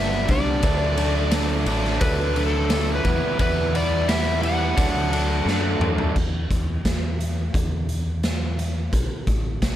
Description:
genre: classic rock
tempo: 87 BPM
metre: 4/4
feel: straight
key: unclear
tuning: A4 = 439 Hz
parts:
  - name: overdriven slide guitar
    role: melody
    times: 0.0-5.8 s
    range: A4 to F#5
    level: -26 LUFS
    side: left 1 dB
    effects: none
  - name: tonewheel organ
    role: sustained chords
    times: 0.0-6.1 s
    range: F#3 to B4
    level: -33 LUFS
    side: left 1 dB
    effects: none
  - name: overdriven electric guitar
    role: riff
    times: 0.0-6.1 s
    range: G2 to E4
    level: -25 LUFS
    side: right 1 dB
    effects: none
  - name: fingered electric bass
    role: bass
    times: 0.0-9.8 s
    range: G1 to F#2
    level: -25 LUFS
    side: equal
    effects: none
  - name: raw garage drum kit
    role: drums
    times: 0.1-9.8 s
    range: crash cymbal, hi-hat, kick drum, ride cymbal, snare drum, toms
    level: -24 LUFS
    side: equal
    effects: none
room: studio reverb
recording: none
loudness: -20 LUFS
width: side -12 dB against mid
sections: 0.0-6.2 A section; 6.2-9.8 B section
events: drum fill 5.5-6.2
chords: 0.0 G; 0.6 D; 3.1 Em; 4.8 D; 6.2 N.C.; 8.9 Asus2

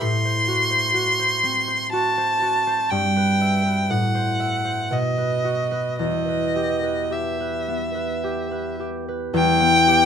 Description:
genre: classical, romantic duo for violin and harp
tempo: 52-66 BPM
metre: 3/4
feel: rubato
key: E minor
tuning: A4 = 439 Hz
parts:
  - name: rich violin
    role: melody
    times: 0.0-10.1 s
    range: D#5 to C6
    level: -20 LUFS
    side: equal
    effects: none
  - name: concert harp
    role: accompaniment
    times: 0.0-10.1 s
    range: E2 to E5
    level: -23 LUFS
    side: equal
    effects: none
room: little or no reverb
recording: close, detailed microphones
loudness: -19 LUFS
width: side -7 dB against mid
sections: 0.0-9.4 A section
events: none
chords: 0.0 F#dim/A; 2.9 Em/G; 3.9 F#m7b5/A; 4.9 B; 6.0 Em

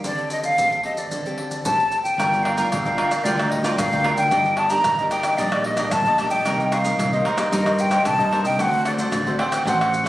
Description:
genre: samba and choro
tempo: 112 BPM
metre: 4/4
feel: straight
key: G minor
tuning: A4 = 440 Hz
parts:
  - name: nylon-string guitar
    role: accompaniment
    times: 0.0-10.1 s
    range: G2 to Bb4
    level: -30 LUFS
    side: left 2 dB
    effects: none
  - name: maracas, surdo, pandeiro and tamborim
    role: percussion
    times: 0.0-10.1 s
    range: none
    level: -28 LUFS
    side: equal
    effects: none
  - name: breathy hollow jazz flute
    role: melody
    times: 0.1-10.1 s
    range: C5 to Bb5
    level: -21 LUFS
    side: equal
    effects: slapback echo
  - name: cavaquinho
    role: accompaniment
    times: 2.2-10.1 s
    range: D4 to G5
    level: -25 LUFS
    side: right 1 dB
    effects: none
  - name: growling fingered electric bass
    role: bass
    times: 2.2-10.1 s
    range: G1 to G2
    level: -26 LUFS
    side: equal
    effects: overdrive
room: moderate large studio reverb, RT60 1.2 s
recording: recorded on a phone in the room, studio reverb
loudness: -18 LUFS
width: side -15 dB against mid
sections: 0.0-2.2 A section; 2.2-10.1 B section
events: none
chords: 0.0 D7sus4; 2.2 Gm7; 4.3 Ebmaj7/G; 6.5 Cm7; 8.6 D7

